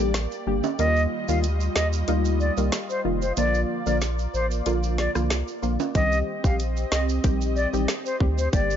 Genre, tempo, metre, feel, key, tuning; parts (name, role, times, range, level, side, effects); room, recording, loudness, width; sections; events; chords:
dancehall; 93 BPM; 4/4; straight; A4 = 442 Hz
punchy chord stab; accompaniment; 0.0-8.8 s; D3 to G4; -27 LUFS; left 1 dB; chorus
lush unison pad; sustained chords; 0.0-8.8 s; G3 to Eb5; -32 LUFS; equal; chorus, phaser, sidechain pumping
warm sub bass; bass; 0.0-8.8 s; F1 to Eb2; -25 LUFS; equal
island pop drum kit; drums; 0.1-8.7 s; hi-hat, kick drum, rim click, snare drum; -25 LUFS; equal
tube shaker and timbales; percussion; 0.1-8.8 s; -35 LUFS; right 12 dB
concert flute; melody; 0.8-8.8 s; C5 to F5; -28 LUFS; left 1 dB; digital delay
little or no reverb; nothing above 7.5 kHz; -22 LUFS; side -9 dB against mid
0.0-8.8 A section
break 0.0-6.0; kick muted 4.7-6.0
0.0 Gm; 0.8 Ebadd9; 3.4 Bb; 6.0 Cm